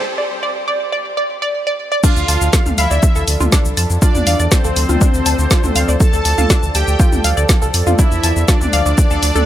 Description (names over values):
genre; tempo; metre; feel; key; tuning
melodic techno; 121 BPM; 4/4; straight; D minor; A4 = 440 Hz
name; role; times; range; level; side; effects
analog synth brass; melody; 0.0-9.5 s; C4 to A4; -24 LUFS; equal; chorus, vintage 12-bit sampler grit, sidechain pumping, dub echo
analog pluck; arpeggios; 0.0-9.4 s; D4 to A5; -20 LUFS; equal; chorus, phaser, sidechain pumping, digital delay
soft supersaw; second line; 2.0-9.5 s; C5 to A5; -24 LUFS; equal; lush chorus, cassette tape, sidechain pumping, digital delay
warm analog pad; sustained chords; 2.0-9.5 s; F3 to A5; -26 LUFS; right 2 dB; chorus, sidechain pumping
deep house drum kit; drums; 2.0-9.5 s; crash cymbal, hi-hat, shaker, snare drum, toms; -19 LUFS; left 1 dB; high-pass filter on snare, high-pass filter on perc, high-pass filter on hats, high-pass filter on toms, high-pass filter on cymbals, high-pass filter on room
electronic kick drum; drums; 2.0-9.1 s; none; -13 LUFS; equal; none
round analog bass; bass; 2.2-9.4 s; C2 to F2; -17 LUFS; equal; sidechain pumping
room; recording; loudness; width
little or no reverb; high-pass filter; -12 LUFS; side -12 dB against mid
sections
0.0-2.0 A section; 2.0-9.5 B section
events
build-up 0.0-2.0; break 0.1-2.0; drop 2.0-9.5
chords
0.0 N.C.; 2.0 Dm